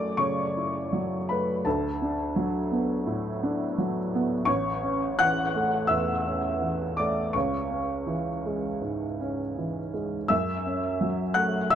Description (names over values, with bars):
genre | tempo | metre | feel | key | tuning
neoclassical minimalist piano | 83 BPM | 4/4 | uneven beats, rubato | F# minor | A4 = 440 Hz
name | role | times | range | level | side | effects
warm upright piano | solo | 0.0-11.8 s | A1 to F#6 | -25 LUFS | equal | tape echo
room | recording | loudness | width
moderate small room reverb, RT60 0.5 s | none | -25 LUFS | side -9 dB against mid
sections
0.0-11.8 A section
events
none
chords
0.0 F#m7; 1.7 D6; 4.5 A; 7.3 C#m; 10.3 F#m7